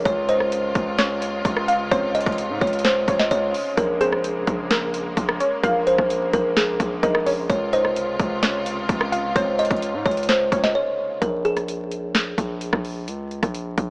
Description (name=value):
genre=hip hop, trap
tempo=129 BPM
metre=4/4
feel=half-time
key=Bb minor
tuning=A4 = 443 Hz
part: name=warbly dusty pluck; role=second line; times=0.0-10.7 s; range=Bb4 to F5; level=-26 LUFS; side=equal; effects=chorus, tape echo
part: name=clear symphonic string section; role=sustained chords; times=0.0-11.2 s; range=C3 to F4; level=-30 LUFS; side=equal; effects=none
part: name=distorted 808-style bass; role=bass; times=0.0-13.9 s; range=Bb1 to Ab2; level=-27 LUFS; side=equal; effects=distortion
part: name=kalimba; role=melody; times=0.1-13.0 s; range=Ab4 to Eb5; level=-22 LUFS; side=equal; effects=low-pass filter
part: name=trap drum kit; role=drums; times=0.1-13.9 s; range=hi-hat, kick drum, rim click, snare drum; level=-24 LUFS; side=equal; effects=overdrive
room=light reverb, digital ambience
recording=vinyl crackle, small speaker sound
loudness=-19 LUFS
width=side -31 dB against mid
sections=0.0-11.2 A section; 11.2-13.9 B section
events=break 10.8-11.2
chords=0.1 Dbmaj7; 3.8 Bbm7; 7.5 Dbmaj7; 11.2 Bbm7